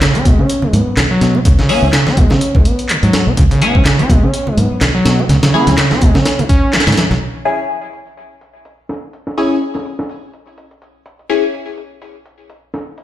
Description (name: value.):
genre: breakbeat, breaks.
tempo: 125 BPM.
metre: 4/4.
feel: swing 56% on 16ths.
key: C# minor.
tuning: A4 = 440 Hz.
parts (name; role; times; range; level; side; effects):
overdriven acid bass; riff; 0.0-7.1 s; C#3 to C#4; -16 LUFS; equal; distortion, cassette tape, tape echo.
breakbeat sampler-style drum kit; drums; 0.0-13.0 s; hi-hat, kick drum, snare drum; -14 LUFS; equal; low-pass filter on kick, low-pass filter on snare, low-pass filter on hats.
electronic handclaps; drums; 0.0-6.8 s; none; -20 LUFS; equal; none.
congas; percussion; 0.1-7.2 s; none; -21 LUFS; right 1 dB; none.
overdriven fingered electric bass; bass; 0.3-7.2 s; B1 to C#3; -14 LUFS; equal; none.
band-passed chord stab; stabs; 1.7-11.4 s; C#4 to G#4; -18 LUFS; left 3 dB; phaser, lush chorus, tape echo.
room: light reverb, digital ambience.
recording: played on a big sound system in a bare room, large studio reverb.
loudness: -10 LUFS.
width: side -13 dB against mid.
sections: 0.0-7.2 A section; 7.2-13.0 B section.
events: filter sweep on synth stab 0.0-7.2; band accent 6.7.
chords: 0.0 C#m.